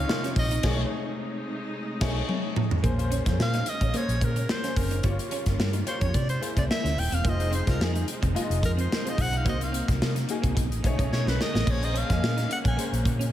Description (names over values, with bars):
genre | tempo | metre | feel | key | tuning
polished 1980s jazz-funk pop | 109 BPM | 4/4 | swing 54% on 16ths | Bb minor | A4 = 441 Hz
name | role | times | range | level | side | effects
clear soprano saxophone | melody | 0.0-12.9 s | Ab4 to Ab5 | -32 LUFS | right 1 dB | slapback echo, tape echo
clear grand piano | accompaniment | 0.0-13.3 s | C3 to Eb5 | -33 LUFS | left 3 dB | ensemble chorus, slapback echo
clear studio string section | sustained chords | 0.0-13.3 s | C3 to G#4 | -38 LUFS | equal | none
semi-hollow electric guitar | riff | 0.0-13.3 s | Bb3 to Eb4 | -37 LUFS | right 5 dB | ensemble chorus
vintage muted fingered electric bass | bass | 0.0-13.3 s | Eb1 to C3 | -27 LUFS | equal | none
modern studio drum kit | drums | 0.1-13.3 s | crash cymbal, hi-hat, kick drum, snare drum, toms | -28 LUFS | equal | none
room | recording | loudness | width
light reverb, small room reverb | none | -24 LUFS | side -12 dB against mid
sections
0.0-2.8 A section; 2.8-13.3 B section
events
band accent 0.6-2.8; drum fill 2.3-2.8, 11.1-11.7; soprano saxophone solo 2.8-13.3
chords
0.0 Dbmaj9; 0.6 B13; 2.8 Bbm9; 5.0 Gm7b5; 6.1 C7b13; 7.2 Fm7; 9.5 Cm7b5; 10.6 B13; 11.7 Bbm9